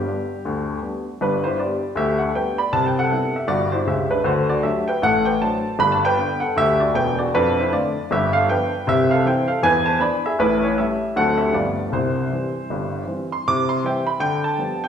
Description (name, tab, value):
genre	jazz, stride piano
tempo	157 BPM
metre	4/4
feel	swing 61% on 8ths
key	G major, C major from 7.3 s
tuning	A4 = 440 Hz
part	warm baby grand piano	solo	0.0-14.9 s	E1 to D6	-18 LUFS	equal	none
room	wet recital hall reverb, RT60 1.4 s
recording	recorded in a church or concert hall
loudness	-18 LUFS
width	side -8 dB against mid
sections	0.0-1.2 A section; 1.2-13.4 A section; 13.4-14.9 B section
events	none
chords	0.0 G; 2.7 Cmaj7; 4.3 D7; 5.8 G; 7.3 Dm/F; 8.1 G7; 8.8 C; 9.6 E7; 10.4 A7; 11.1 D7; 11.5 G9; 11.9 C; 14.2 G7/D